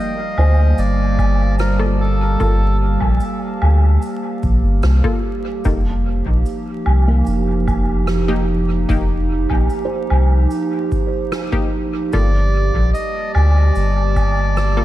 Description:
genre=ambient dub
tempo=74 BPM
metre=4/4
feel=straight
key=G minor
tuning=A4 = 439 Hz
part: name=melodica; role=melody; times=0.0-2.8, 12.1-14.8 s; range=A4 to Eb5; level=-24 LUFS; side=equal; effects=dub echo
part: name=warbly tape-like pad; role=sustained chords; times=0.0-14.8 s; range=F3 to A5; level=-23 LUFS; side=right 2 dB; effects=chorus, built-in reverb, vintage 12-bit sampler grit
part: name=felt-muted upright piano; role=arpeggios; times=0.0-12.3 s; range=Bb3 to C5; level=-29 LUFS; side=right 3 dB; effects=tape echo
part: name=soft dub sub bass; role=bass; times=0.4-14.8 s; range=F1 to D2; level=-15 LUFS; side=equal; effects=none
part: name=woodblock, cabasa and rim click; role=drums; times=0.4-14.7 s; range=none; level=-28 LUFS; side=equal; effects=dub echo
part: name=electronic kick drum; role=drums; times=1.2-14.3 s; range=none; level=-22 LUFS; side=equal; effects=none
part: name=filtered dub chord stab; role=stabs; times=1.8-14.8 s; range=Bb3 to A4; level=-27 LUFS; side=left 3 dB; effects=chorus, dub echo
room=light reverb, studio ambience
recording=vinyl crackle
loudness=-14 LUFS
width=side -14 dB against mid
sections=0.0-14.8 A section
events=none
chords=0.0 Gm9; 5.6 F9sus4; 12.1 Gm9

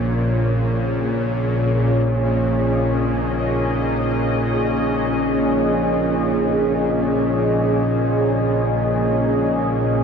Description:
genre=dark ambient drone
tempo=free time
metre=none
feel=none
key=unclear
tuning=A4 = 437 Hz
part: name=deep dark ambient pad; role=sustained chords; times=0.0-10.0 s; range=Bb3 to Eb5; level=-21 LUFS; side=equal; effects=chorus, built-in reverb, shimmer reverb
part: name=bowed-like drone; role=drone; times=0.0-10.0 s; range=Bb1 to Bb2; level=-20 LUFS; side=equal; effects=built-in reverb
part: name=wind-like tuned noise texture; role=texture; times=0.0-10.0 s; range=Db5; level=-30 LUFS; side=right 2 dB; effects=built-in reverb, shimmer reverb
room=wet huge ambient reverb, RT60 7.6 s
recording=worn, warbling old tape, cassette tape, warbly pitch drift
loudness=-17 LUFS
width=side -6 dB against mid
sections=0.0-10.0 A section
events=none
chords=0.0 Db5

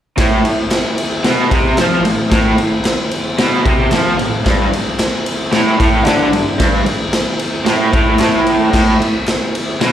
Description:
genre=garage rock duo or trio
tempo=112 BPM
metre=4/4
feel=straight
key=A minor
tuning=A4 = 440 Hz
part: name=raw garage guitar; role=riff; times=0.2-9.9 s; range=G2 to F3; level=-14 LUFS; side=equal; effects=overdrive, harmonic tremolo, slapback echo
part: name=raw garage drum kit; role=drums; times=0.2-9.9 s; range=crash cymbal, kick drum, ride cymbal, snare drum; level=-15 LUFS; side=equal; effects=none
part: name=group handclap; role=percussion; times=0.7-9.4 s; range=none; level=-28 LUFS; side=equal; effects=none
room=light reverb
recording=live gig heard through the venue's PA, recital hall reverb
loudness=-12 LUFS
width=side -10 dB against mid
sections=0.2-9.9 A section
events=none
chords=none

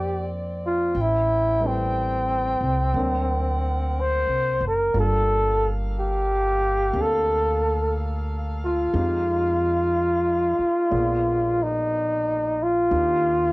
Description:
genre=jazz ballad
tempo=60 BPM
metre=4/4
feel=swing 66% on 8ths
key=Bb major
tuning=A4 = 439 Hz
part: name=mellow flugelhorn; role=melody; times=0.0-13.5 s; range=C4 to C5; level=-21 LUFS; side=equal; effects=none
part: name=warm grand piano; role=accompaniment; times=0.0-13.5 s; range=F3 to D5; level=-34 LUFS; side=left 1 dB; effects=cassette tape
part: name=mellow saxophone section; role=sustained chords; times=0.0-13.5 s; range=Cb3 to G5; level=-37 LUFS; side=equal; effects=cassette tape
part: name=upright bass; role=bass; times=0.0-13.5 s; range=F#1 to F2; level=-26 LUFS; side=equal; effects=none
room=moderate studio reverb, RT60 0.6 s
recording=home recording on cassette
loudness=-20 LUFS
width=side -21 dB against mid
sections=0.0-13.5 A section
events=none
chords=0.0 Bbadd9; 1.0 Am7; 2.9 D7b13; 4.9 Gm9; 8.9 Fm7; 10.9 Bb7b9; 12.9 Ebmaj9

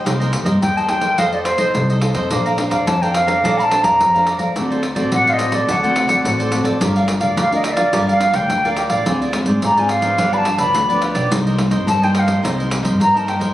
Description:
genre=samba and choro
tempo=107 BPM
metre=4/4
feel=straight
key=G minor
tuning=A4 = 439 Hz
part: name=cavaquinho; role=accompaniment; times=0.0-13.5 s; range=Eb4 to Bb5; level=-23 LUFS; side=right 2 dB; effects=none
part: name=nylon-string guitar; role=accompaniment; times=0.0-13.5 s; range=G2 to C5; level=-22 LUFS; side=left 2 dB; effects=none
part: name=upright bass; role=bass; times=0.0-13.5 s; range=G1 to Ab2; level=-22 LUFS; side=equal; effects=none
part: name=pandeiro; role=percussion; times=0.1-13.5 s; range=none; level=-24 LUFS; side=right 1 dB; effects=none
part: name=wooden flute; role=melody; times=0.6-13.3 s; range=C5 to B5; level=-17 LUFS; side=equal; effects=none
room=wet large studio reverb, RT60 1.4 s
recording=recorded on a phone in the room, studio reverb, compression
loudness=-14 LUFS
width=side -14 dB against mid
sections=0.0-6.8 A section; 6.8-13.5 A section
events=none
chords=0.1 Cm7; 1.2 F7; 2.3 Bbmaj9; 4.6 D7; 6.8 Gm7; 9.1 Dm7b5; 10.2 G7; 11.3 Cm7

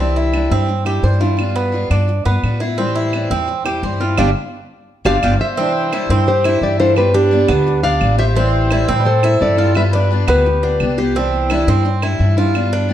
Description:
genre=latin, Cuban son and guajira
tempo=172 BPM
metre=4/4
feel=straight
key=C major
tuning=A4 = 440 Hz
part: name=picked steel-string acoustic guitar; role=accompaniment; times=0.0-12.9 s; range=C3 to F4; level=-21 LUFS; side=left 2 dB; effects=none
part: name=Cuban tres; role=arpeggios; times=0.0-12.9 s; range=B3 to C5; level=-20 LUFS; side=right 4 dB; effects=none
part: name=upright bass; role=bass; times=0.0-12.9 s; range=G1 to A2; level=-17 LUFS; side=equal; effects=none
part: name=claves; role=percussion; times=0.3-12.7 s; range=none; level=-29 LUFS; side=right 4 dB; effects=none
part: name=nylon-string guitar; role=melody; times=5.1-10.9 s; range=G4 to F5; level=-17 LUFS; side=equal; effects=none
part: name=bright trumpet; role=second line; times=5.1-10.9 s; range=D4 to D5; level=-25 LUFS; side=left 5 dB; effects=analog delay
room=moderate large studio reverb, RT60 1.2 s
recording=dark, warm production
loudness=-13 LUFS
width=side -11 dB against mid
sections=0.0-5.6 A section; 5.6-12.9 B section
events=band accent 4.2-5.6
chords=0.0 Cadd9; 1.4 G7; 2.8 Am7; 4.2 G7; 5.6 Cadd9; 7.0 G7; 8.4 Am7; 9.8 G7; 11.2 Cadd9

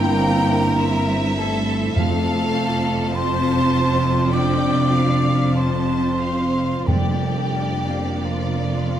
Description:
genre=classical, slow romantic movement for symphony orchestra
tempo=44-51 BPM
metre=4/4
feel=rubato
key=unclear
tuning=A4 = 440 Hz
part: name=rich studio violin section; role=melody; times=0.0-9.0 s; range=D5 to A5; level=-30 LUFS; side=left 1 dB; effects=none
part: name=mellow hollow concert flute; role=second line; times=0.0-9.0 s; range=F5 to D6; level=-26 LUFS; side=left 1 dB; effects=none
part: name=rich studio violin section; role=second line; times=0.0-9.0 s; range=F4 to D5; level=-30 LUFS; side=left 1 dB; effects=none
part: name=rich studio viola section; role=accompaniment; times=0.0-9.0 s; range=Bb3 to F4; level=-26 LUFS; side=right 2 dB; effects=none
part: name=mellow French horn section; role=sustained chords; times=0.0-9.0 s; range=F3 to D4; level=-25 LUFS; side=left 2 dB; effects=none
part: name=concert harp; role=arpeggios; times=0.0-9.0 s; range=F2 to C6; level=-31 LUFS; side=left 8 dB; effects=none
part: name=warm studio cello section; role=bass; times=0.0-9.0 s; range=F2 to G2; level=-26 LUFS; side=right 1 dB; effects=none
part: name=warm studio double bass section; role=bass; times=0.0-9.0 s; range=F1 to G1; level=-24 LUFS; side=right 4 dB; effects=none
part: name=timpani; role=percussion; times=2.0-8.9 s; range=F2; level=-25 LUFS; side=right 2 dB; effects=none
room=light reverb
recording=close, detailed microphones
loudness=-17 LUFS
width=side -10 dB against mid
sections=0.0-9.0 A section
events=none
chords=0.0 C7/G; 2.0 F; 6.9 Bb/F

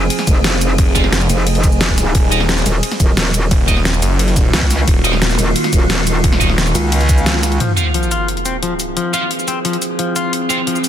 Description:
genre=dark technical drum and bass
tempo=176 BPM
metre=4/4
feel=straight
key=F phrygian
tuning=A4 = 440 Hz
part: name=metallic inharmonic drone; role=sustained chords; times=0.0-10.9 s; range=Eb3 to Ab4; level=-21 LUFS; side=equal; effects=chorus, built-in reverb, phaser, sidechain pumping
part: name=metallic wobble bass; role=bass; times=0.0-7.6 s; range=Eb1 to Db2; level=-16 LUFS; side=equal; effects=chorus
part: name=dubstep drum kit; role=drums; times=0.1-10.9 s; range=hi-hat, ride cymbal, shaker, snare drum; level=-19 LUFS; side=equal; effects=overdrive, small room ambience
part: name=electronic kick drum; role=drums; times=0.3-7.2 s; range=none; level=-14 LUFS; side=equal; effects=overdrive, small room ambience
part: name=snarling distorted saw bass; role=bass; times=0.8-6.7 s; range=Eb1 to Gb1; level=-16 LUFS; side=equal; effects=distortion, overdrive, sidechain pumping
part: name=scooped high-gain guitar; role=stabs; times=1.0-10.6 s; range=F3 to F5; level=-22 LUFS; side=right 3 dB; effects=distortion, digital delay
part: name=semi-hollow electric guitar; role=arpeggios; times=7.6-10.8 s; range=F3 to F4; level=-20 LUFS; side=left 4 dB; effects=vintage 12-bit sampler grit, sidechain pumping, low-pass filter, digital delay
part: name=sub drop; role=sound effects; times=7.6-9.0 s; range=none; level=-20 LUFS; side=equal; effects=none
room=digital ambience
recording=dense, heavily limited modern master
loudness=-12 LUFS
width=side -10 dB against mid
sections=0.0-7.6 A section; 7.6-10.9 B section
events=drop 0.0-7.6; break 7.3-7.6; impact 7.6-9.0; filter sweep on clean electric guitar 7.6-10.9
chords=0.0 Fm; 2.1 Ebm; 7.6 Fm

